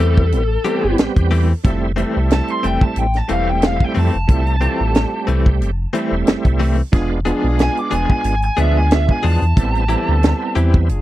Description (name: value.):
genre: straight-eighth soul blues.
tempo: 91 BPM.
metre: 4/4.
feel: swing 54% on 16ths.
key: A minor.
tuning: A4 = 442 Hz.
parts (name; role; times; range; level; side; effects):
biting lead guitar; melody; 0.0-10.5 s; A4 to D6; -22 LUFS; left 1 dB; overdrive.
bright tonewheel organ; accompaniment; 0.0-10.9 s; G3 to G4; -22 LUFS; right 4 dB; slow rotary speaker, overdrive, chorus vibrato.
direct-recorded clean electric guitar; stabs; 0.0-10.8 s; E3 to G#4; -22 LUFS; left 6 dB; tremolo.
sub bass with octave; bass; 0.0-11.0 s; E1 to F2; -17 LUFS; equal; none.
tight funk drum kit; drums; 0.0-11.0 s; hi-hat, kick drum, snare drum; -15 LUFS; equal; none.
clear horn section; sustained chords; 1.6-11.0 s; C4 to A4; -28 LUFS; left 2 dB; none.
room: little or no reverb.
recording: dry, close 1970s-style studio recording.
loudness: -14 LUFS.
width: side -15 dB against mid.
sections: 0.0-11.0 A section.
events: lead electric guitar solo 0.0-11.0.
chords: 0.0 Am7; 1.6 Fmaj7; 6.9 E7b9; 9.6 Am7.